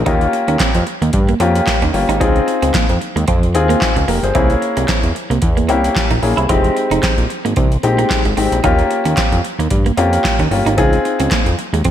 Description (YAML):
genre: early-eighties boogie funk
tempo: 112 BPM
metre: 4/4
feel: swing 56% on 16ths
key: unclear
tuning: A4 = 440 Hz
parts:
  - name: fat analog bass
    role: bass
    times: 0.0-11.9 s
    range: F1 to G2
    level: -17 LUFS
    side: equal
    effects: none
  - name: warm baby grand piano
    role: accompaniment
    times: 0.1-11.5 s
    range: Ab3 to C5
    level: -17 LUFS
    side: left 3 dB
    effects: slapback echo
  - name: clean electric guitar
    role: riff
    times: 0.1-11.9 s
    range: Ab3 to F4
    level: -22 LUFS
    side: right 5 dB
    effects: wide subtle chorus
  - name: booming analog drum machine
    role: drums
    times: 0.1-11.9 s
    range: handclaps, hi-hat, kick drum, snare drum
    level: -18 LUFS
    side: equal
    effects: none
room: moderate lush hall reverb, RT60 1.9 s, digital ambience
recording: big arena sound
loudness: -13 LUFS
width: side -10 dB against mid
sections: 0.0-11.9 A section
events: none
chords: 0.1 Eb9; 2.2 Dbmaj7; 4.4 C7b9b13; 6.5 Fm9; 8.6 Eb9; 10.8 Dbmaj7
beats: | 0.07 0.60 1.14 1.67 | 2.21 2.74 3.28 3.81 | 4.35 4.89 5.42 5.96 | 6.49 7.03 7.57 8.10 | 8.64 9.17 9.71 10.24 | 10.78 11.31 11.85